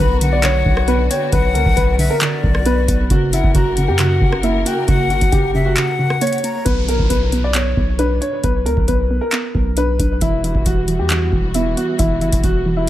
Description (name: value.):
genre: hip hop, trap.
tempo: 135 BPM.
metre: 4/4.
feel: half-time.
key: B harmonic minor.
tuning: A4 = 440 Hz.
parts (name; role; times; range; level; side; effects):
warm baby grand piano; melody; 0.0-12.9 s; E4 to D5; -20 LUFS; left 1 dB; low-pass filter, dub echo.
breathy jazz flute; second line; 0.0-6.6 s; D5 to B5; -24 LUFS; left 6 dB; dub echo.
soft round pluck; accompaniment; 0.0-12.9 s; C#3 to D4; -22 LUFS; right 3 dB; chorus, low-pass filter, dub echo.
dark symphonic string section; sustained chords; 0.0-6.6, 10.2-12.9 s; C#3 to A#4; -27 LUFS; left 1 dB; none.
long sustained 808-style bass; bass; 0.0-12.9 s; E1 to F#2; -19 LUFS; equal; none.
booming analog drum machine; drums; 0.2-12.9 s; handclaps, hi-hat, kick drum, rim click; -19 LUFS; equal; none.
downlifter and swell; sound effects; 6.7-12.9 s; none; -31 LUFS; left 1 dB; none.
room: little or no reverb.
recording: echo-heavy mix.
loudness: -14 LUFS.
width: side -13 dB against mid.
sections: 0.0-6.7 A section; 6.7-12.9 B section.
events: break 5.8-6.7.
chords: 0.0 Bm; 3.1 F#; 6.7 Bm; 10.2 Emadd9.